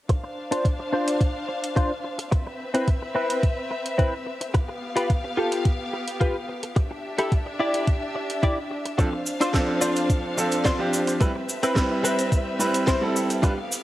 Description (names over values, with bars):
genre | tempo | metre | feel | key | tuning
nu-disco, nu disco | 108 BPM | 4/4 | straight | D dorian | A4 = 440 Hz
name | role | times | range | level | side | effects
clear studio string section | sustained chords | 0.1-13.8 s | B3 to F5 | -31 LUFS | left 1 dB | sidechain pumping, cassette tape
direct-recorded clean electric guitar | riff | 0.1-13.6 s | C4 to D5 | -27 LUFS | left 1 dB | analog chorus, low-pass filter, cassette tape, tape echo
electronic kick drum | drums | 0.1-13.5 s | none | -22 LUFS | equal | overdrive, cassette tape
house drum kit | drums | 0.1-13.5 s | hi-hat, snare drum, woodblock | -32 LUFS | right 1 dB | cassette tape
bright grand piano | accompaniment | 9.0-13.5 s | F3 to B4 | -25 LUFS | right 1 dB | cassette tape, tape echo
cabasa | percussion | 9.0-13.8 s | none | -31 LUFS | right 1 dB | none
room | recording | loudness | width
light reverb, studio reverb | home recording on cassette | -22 LUFS | side -15 dB against mid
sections
0.1-13.8 A section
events
filter sweep on clean electric guitar 0.1-13.8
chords
0.1 Dm7; 2.3 Cmaj7; 4.5 G7; 6.8 Em7; 9.0 Dm7; 11.2 Cmaj7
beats
| 0.10 0.65 1.21 1.77 | 2.32 2.88 3.43 3.99 | 4.54 5.10 5.65 6.21 | 6.77 7.32 7.88 8.43 | 8.99 9.54 10.10 10.65 | 11.21 11.77 12.32 12.88 | 13.43